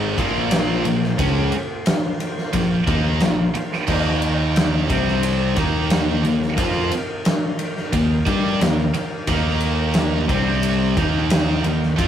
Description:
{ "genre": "hard rock", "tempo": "89 BPM", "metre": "4/4", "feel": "straight", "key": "unclear", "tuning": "A4 = 440 Hz", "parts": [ { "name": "overdriven tonewheel organ", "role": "sustained chords", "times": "0.0-12.1 s", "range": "Eb3 to G5", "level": "-33 LUFS", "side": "equal", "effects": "chorus vibrato, slow rotary speaker" }, { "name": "high-gain distorted guitar", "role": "riff", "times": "0.0-12.1 s", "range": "Ab2 to G4", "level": "-23 LUFS", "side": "right 5 dB", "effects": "distortion" }, { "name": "overdriven semi-hollow guitar", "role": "riff", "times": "0.0-12.1 s", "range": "Ab2 to G4", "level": "-23 LUFS", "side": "left 4 dB", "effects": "none" }, { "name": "picked electric bass", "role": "bass", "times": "0.0-12.1 s", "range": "Ab1 to G2", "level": "-24 LUFS", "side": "equal", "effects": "none" }, { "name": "big rock drum kit", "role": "drums", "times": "0.2-12.1 s", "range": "crash cymbal, kick drum, ride cymbal, snare drum", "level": "-22 LUFS", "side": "equal", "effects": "none" } ], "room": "moderate stone room reverb, RT60 1.4 s", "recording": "rough rehearsal-room recording", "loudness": "-17 LUFS", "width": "side -9 dB against mid", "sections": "0.0-12.1 A section", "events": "none", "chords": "0.2 Bb5; 3.9 Eb5; 4.9 C5; 5.6 Eb5; 10.3 C5; 11.0 Eb5", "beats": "0.51 | 1.18 1.86 2.53 3.21 | 3.88 4.56 5.23 5.91 | 6.58 7.26 7.93 8.61 | 9.28 9.96 10.63 11.30 | 11.98" }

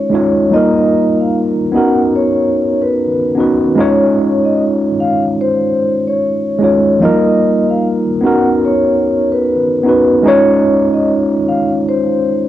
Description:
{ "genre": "hip hop", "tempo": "74 BPM", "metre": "4/4", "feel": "swing 64% on 16ths", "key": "Db major", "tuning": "A4 = 440 Hz", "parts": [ { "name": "vibraphone with soft mallets", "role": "melody", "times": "0.0-12.5 s", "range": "Cb5 to Gb5", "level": "-16 LUFS", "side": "left 1 dB", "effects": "low-pass filter, cassette tape" }, { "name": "tine electric piano", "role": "accompaniment", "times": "0.0-12.5 s", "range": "F3 to Db5", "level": "-12 LUFS", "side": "equal", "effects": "medium stereo tremolo, low-pass filter" } ], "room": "moderate studio reverb, RT60 0.5 s", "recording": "home recording on cassette", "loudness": "-10 LUFS", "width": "side -12 dB against mid", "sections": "0.0-12.5 A section", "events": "none", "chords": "0.0 Dbadd9; 0.5 Ebadd9; 1.7 Cbmaj9; 3.8 Dbadd9; 7.0 Ebadd9; 8.2 Cbmaj9; 10.3 Dbadd9", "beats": "| 0.53 1.34 2.15 2.96 | 3.77 4.58 5.39 6.21 | 7.02 7.83 8.64 9.45 | 10.26 11.07 11.88" }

